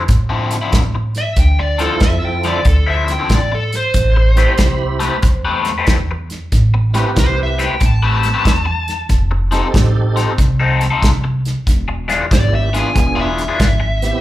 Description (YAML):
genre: electric blues shuffle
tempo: 93 BPM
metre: 4/4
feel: swing 66% on 8ths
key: A minor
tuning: A4 = 438 Hz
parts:
  - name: crunchy overdriven guitar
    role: riff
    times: 0.1-13.8 s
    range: D3 to B4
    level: -19 LUFS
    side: left 5 dB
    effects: phaser, slapback echo
  - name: upright bass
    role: bass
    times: 0.1-14.1 s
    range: E1 to A2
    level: -16 LUFS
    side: equal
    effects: none
  - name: natural country drum kit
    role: drums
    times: 0.1-14.1 s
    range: hi-hat, kick drum, snare drum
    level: -16 LUFS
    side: equal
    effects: none
  - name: smooth overdriven lead guitar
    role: melody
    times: 1.2-14.2 s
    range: A4 to A5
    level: -20 LUFS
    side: equal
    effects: slapback echo
  - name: tonewheel organ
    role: accompaniment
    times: 1.8-14.2 s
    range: Bb3 to B5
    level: -22 LUFS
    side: right 6 dB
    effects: slow rotary speaker, overdrive, chorus vibrato, slapback echo
room: little or no reverb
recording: live gig heard through the venue's PA, club reverb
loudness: -13 LUFS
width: side -15 dB against mid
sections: 0.0-14.2 A section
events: none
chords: 0.0 Dm9; 3.9 Am9; 9.1 F7; 11.7 E7b9